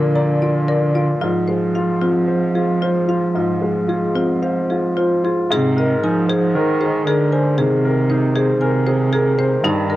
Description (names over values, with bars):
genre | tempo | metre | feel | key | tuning
neoclassical piano and strings | 57 BPM | 4/4 | rubato | unclear | A4 = 441 Hz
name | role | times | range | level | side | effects
muted cello | second line | 0.0-10.0 s | C3 to F3 | -19 LUFS | right 2 dB | cassette tape
clear upright piano | accompaniment | 0.0-10.0 s | G2 to D5 | -19 LUFS | left 1 dB | cassette tape, plate reverb
marimba with hard mallets | arpeggios | 0.0-10.0 s | Eb4 to Bb5 | -22 LUFS | left 2 dB | cassette tape, analog delay, plate reverb
room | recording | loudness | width
moderate small room ambience, RT60 0.5 s | home recording on cassette | -15 LUFS | side -15 dB against mid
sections
0.0-5.5 A section; 5.5-10.0 B section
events
none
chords
0.0 Bb; 1.2 Fm/Ab; 5.5 Abadd9